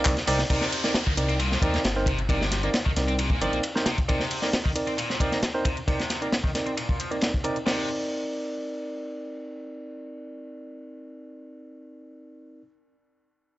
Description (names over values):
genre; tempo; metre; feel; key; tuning
breakbeat, breaks; 134 BPM; 4/4; straight; C minor; A4 = 442 Hz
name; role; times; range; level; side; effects
barky tine electric piano; stabs; 0.0-12.6 s; C4 to D5; -30 LUFS; right 1 dB; low-pass filter, tape echo
dark detuned saw bass; bass; 0.0-3.6 s; G1 to Eb2; -28 LUFS; equal; none
crunchy breakbeat drum kit; drums; 0.1-7.8 s; hi-hat, kick drum, ride cymbal, snare drum; -26 LUFS; equal; none
garage drum kit; drums; 0.1-7.6 s; handclaps, hi-hat; -32 LUFS; left 1 dB; none
tight distorted guitar; riff; 0.3-7.9 s; Bb2 to C4; -32 LUFS; left 1 dB; distortion, overdrive, low-pass filter, tape echo
downlifter; sound effects; 0.5-4.1 s; none; -36 LUFS; equal; none
room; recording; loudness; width
light reverb, small room ambience; dry, gritty hardware recording, nothing above 7.9 kHz; -23 LUFS; side -16 dB against mid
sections
0.5-7.7 A section; 7.7-11.2 B section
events
filter sweep on distorted electric guitar 0.5-7.7; filter sweep on tine electric piano 0.5-7.7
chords
0.0 Cm9